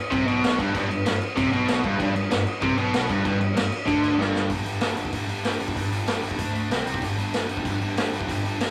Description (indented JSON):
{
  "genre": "punk rock",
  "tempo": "191 BPM",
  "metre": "4/4",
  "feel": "straight",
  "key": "G major",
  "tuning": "A4 = 441 Hz",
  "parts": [
    { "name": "distorted electric guitar", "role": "riff", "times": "0.1-4.5 s", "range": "G2 to D3", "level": "-32 LUFS", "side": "equal", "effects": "overdrive" },
    { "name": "overdriven electric guitar", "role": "riff", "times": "0.1-4.5 s", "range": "G2 to D3", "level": "-28 LUFS", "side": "equal", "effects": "none" },
    { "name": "tight distorted guitar", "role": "riff", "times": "0.1-8.7 s", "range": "G2 to D4", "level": "-32 LUFS", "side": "equal", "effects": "distortion" },
    { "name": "fuzz picked electric bass", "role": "bass", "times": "0.1-8.7 s", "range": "G1 to D2", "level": "-35 LUFS", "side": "equal", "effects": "overdrive" },
    { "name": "raw garage drum kit", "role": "drums", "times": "0.1-8.7 s", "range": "crash cymbal, hi-hat, kick drum, snare drum", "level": "-28 LUFS", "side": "equal", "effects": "none" }
  ],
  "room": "moderate small room reverb, RT60 0.5 s",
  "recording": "rough rehearsal-room recording",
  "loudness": "-24 LUFS",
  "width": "mono",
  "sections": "0.0-4.5 A section; 4.5-8.7 B section",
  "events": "drum fill 4.2-4.5",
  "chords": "0.0 G; 4.5 G5; 6.4 D5; 6.7 C5; 7.0 G5",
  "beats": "0.12 0.43 | 0.74 1.06 1.37 1.68 | 1.99 2.31 2.62 2.93 | 3.25 3.56 3.87 4.19 | 4.50 4.81 5.13 5.44 | 5.76 6.07 6.39 6.70 | 7.02 7.33 7.65 7.96 | 8.28 8.59"
}